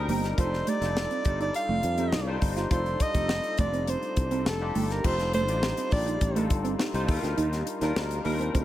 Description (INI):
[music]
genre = polished 1980s jazz-funk pop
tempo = 103 BPM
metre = 4/4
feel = straight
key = unclear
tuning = A4 = 438 Hz
[part]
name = breathy soprano saxophone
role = melody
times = 0.0-6.5 s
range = A4 to F5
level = -30 LUFS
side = right 1 dB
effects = tape echo
[part]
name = barky tine electric piano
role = accompaniment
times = 0.0-8.6 s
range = G3 to C5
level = -32 LUFS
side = left 2 dB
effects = overdrive, ensemble chorus
[part]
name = sustaining fretless electric bass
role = bass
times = 0.0-8.6 s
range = F1 to F2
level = -30 LUFS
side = equal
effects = none
[part]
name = mellow electric guitar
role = riff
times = 0.1-8.6 s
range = A3 to F4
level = -33 LUFS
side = right 4 dB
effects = wide subtle chorus
[part]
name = tight funk drum kit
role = drums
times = 0.1-8.6 s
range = crash cymbal, hi-hat, kick drum, snare drum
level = -30 LUFS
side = equal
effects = none
[sound]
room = light reverb, small room ambience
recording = none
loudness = -25 LUFS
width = side -13 dB against mid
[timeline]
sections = 0.0-5.0 A section; 5.0-8.6 B section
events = none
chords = 0.4 F13; 7.1 Ebmaj9